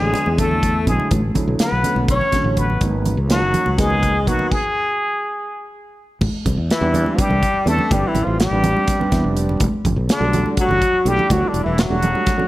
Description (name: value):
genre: electric jazz fusion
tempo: 247 BPM (eighths)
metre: 7/8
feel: straight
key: A minor from 6.2 s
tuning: A4 = 437 Hz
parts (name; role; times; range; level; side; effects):
- trumpet with plunger mute; melody; 0.0-12.5 s; D4 to C#5; -21 LUFS; equal; none
- warm tenor saxophone; second line; 0.0-12.5 s; D3 to C#4; -25 LUFS; left 3 dB; none
- dark concert grand piano; accompaniment; 0.0-12.5 s; D3 to E5; -24 LUFS; right 2 dB; none
- fretless electric bass; bass; 0.0-12.1 s; E1 to E2; -20 LUFS; equal; none
- modern studio drum kit; drums; 0.1-12.4 s; crash cymbal, hi-hat, kick drum, snare drum; -22 LUFS; equal; none
- congas; percussion; 0.1-12.5 s; none; -25 LUFS; right 2 dB; none
room: light reverb, small room ambience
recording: none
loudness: -16 LUFS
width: side -16 dB against mid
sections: 0.0-6.2 A section; 6.2-12.5 B section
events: stop 4.5-6.2; grand piano fill 8.9-9.6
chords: 0.0 Bm9; 2.8 G#m9; 4.5 N.C.; 6.2 Am11; 9.6 Em11